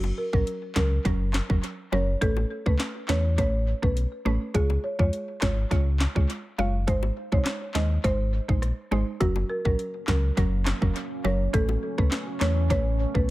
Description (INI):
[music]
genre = dancehall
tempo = 103 BPM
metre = 4/4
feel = straight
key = unclear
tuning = A4 = 440 Hz
[part]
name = folk marimba with medium mallets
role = melody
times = 0.0-13.3 s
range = Gb4 to F5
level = -31 LUFS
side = equal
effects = tape echo
[part]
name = mallet-like synth pluck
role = accompaniment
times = 0.0-13.3 s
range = Gb3 to Db5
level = -32 LUFS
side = right 4 dB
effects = chorus
[part]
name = sub bass with octave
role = bass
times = 0.0-13.3 s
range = Gb1 to F2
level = -25 LUFS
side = equal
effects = none
[part]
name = bongos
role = percussion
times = 0.0-12.6 s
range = none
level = -38 LUFS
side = left 8 dB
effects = tape echo
[part]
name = island pop drum kit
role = drums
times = 0.3-13.3 s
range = handclaps, hi-hat, kick drum, rim click, snare drum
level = -26 LUFS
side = equal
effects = tape echo
[part]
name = deep dark ambient pad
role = sustained chords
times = 9.9-13.3 s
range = Gb3 to Db4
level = -36 LUFS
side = right 3 dB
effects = chorus, built-in reverb, sidechain pumping
[sound]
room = digital ambience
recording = echo-heavy mix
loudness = -23 LUFS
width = side -17 dB against mid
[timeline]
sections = 0.0-13.3 A section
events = none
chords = 0.0 Gb; 2.2 Aadd9; 4.5 Db; 6.9 Ab; 9.2 Gb; 11.5 Aadd9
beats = 0.47 1.05 1.63 | 2.22 2.80 3.38 3.96 | 4.55 5.13 5.71 6.29 | 6.88 7.46 8.04 8.62 | 9.21 9.79 10.37 10.96 | 11.54 12.12 12.70 13.29